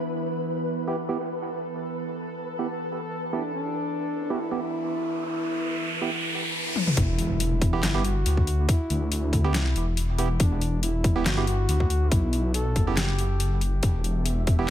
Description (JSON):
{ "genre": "deep dubstep", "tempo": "140 BPM", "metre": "4/4", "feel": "swing 54% on 16ths, half-time", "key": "E minor", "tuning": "A4 = 440 Hz", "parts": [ { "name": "bowed-like drone", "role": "sustained chords", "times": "0.0-6.5, 13.8-14.7 s", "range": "E3 to A4", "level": "-33 LUFS", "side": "equal", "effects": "built-in reverb" }, { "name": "flickering grainy texture", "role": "texture", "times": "0.0-6.5, 14.1-14.7 s", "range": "B4 to E5", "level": "-36 LUFS", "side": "equal", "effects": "built-in reverb" }, { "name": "percussive organ stab", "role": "stabs", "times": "0.9-14.7 s", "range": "B3 to G4", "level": "-32 LUFS", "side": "right 5 dB", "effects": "chorus, dub echo" }, { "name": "mellow duduk", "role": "melody", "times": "3.3-13.6 s", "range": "D4 to A4", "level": "-32 LUFS", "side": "equal", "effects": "dub echo" }, { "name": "riser and impact", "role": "sound effects", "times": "4.4-8.7 s", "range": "none", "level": "-31 LUFS", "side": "equal", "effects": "none" }, { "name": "dubstep drum kit", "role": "drums", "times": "6.8-14.6 s", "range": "handclaps, hi-hat, snare drum, toms", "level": "-29 LUFS", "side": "left 2 dB", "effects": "overdrive, low-pass filter on toms, small room ambience, low-pass filter on hats, low-pass filter on snare" }, { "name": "dark detuned saw bass", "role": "bass", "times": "7.0-14.7 s", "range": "E1 to D2", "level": "-24 LUFS", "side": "equal", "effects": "none" }, { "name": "electronic kick drum", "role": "drums", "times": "7.0-14.6 s", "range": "none", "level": "-23 LUFS", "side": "equal", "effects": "small room ambience" } ], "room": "light reverb", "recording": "echo-heavy mix", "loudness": "-23 LUFS", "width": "side -11 dB against mid", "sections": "0.0-7.0 A section; 7.0-14.7 B section", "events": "filter sweep on synth drone 0.0-7.0; riser 4.4-7.0; drum fill 6.8; drop 7.0-14.7; impact 7.0-8.7", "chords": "0.0 Em" }